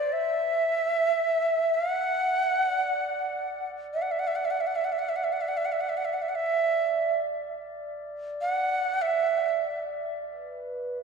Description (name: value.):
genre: world meditative, free-time meditation music.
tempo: free time.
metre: none.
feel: none.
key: unclear.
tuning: A4 = 441 Hz.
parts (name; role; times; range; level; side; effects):
breathy Native American-style cedar flute; melody; 0.0-9.8 s; D5 to F#5; -25 LUFS; right 2 dB; analog delay.
glass harmonica; texture; 0.0-11.0 s; B4 to E5; -36 LUFS; left 1 dB; none.
room: wet echo chamber reverb, RT60 2.8 s.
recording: echo-heavy mix, cassette tape, faint mains hum.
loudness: -25 LUFS.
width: side -5 dB against mid.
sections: 0.0-10.0 A section; 10.0-11.0 A section.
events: none.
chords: none.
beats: free time.